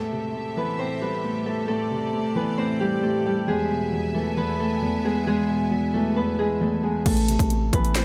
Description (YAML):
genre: hip hop, trap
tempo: 134 BPM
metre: 4/4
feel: half-time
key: A minor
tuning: A4 = 441 Hz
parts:
  - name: Celtic harp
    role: melody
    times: 0.0-8.0 s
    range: G3 to C5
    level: -27 LUFS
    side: equal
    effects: low-pass filter
  - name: dark concert grand piano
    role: accompaniment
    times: 0.0-8.0 s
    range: E2 to B3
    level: -30 LUFS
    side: equal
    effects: low-pass filter
  - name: bright symphonic string section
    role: sustained chords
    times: 0.0-7.0 s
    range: C3 to G#5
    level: -38 LUFS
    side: equal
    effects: none
  - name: hard-hitting 808-style bass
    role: bass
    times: 7.1-8.0 s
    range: A1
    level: -26 LUFS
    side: equal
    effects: none
  - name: trap drum kit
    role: drums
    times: 7.1-8.0 s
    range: crash cymbal, handclaps, hi-hat, kick drum, snare drum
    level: -27 LUFS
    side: equal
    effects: overdrive
room: light reverb, studio reverb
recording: none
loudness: -24 LUFS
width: mono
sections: 0.0-7.1 A section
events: none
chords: 0.0 Am7; 3.5 E; 7.1 Am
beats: 0.34 0.79 1.24 | 1.69 2.13 2.58 3.03 | 3.48 3.92 4.37 4.82 | 5.27 5.71 6.16 6.61 | 7.06 7.51 7.95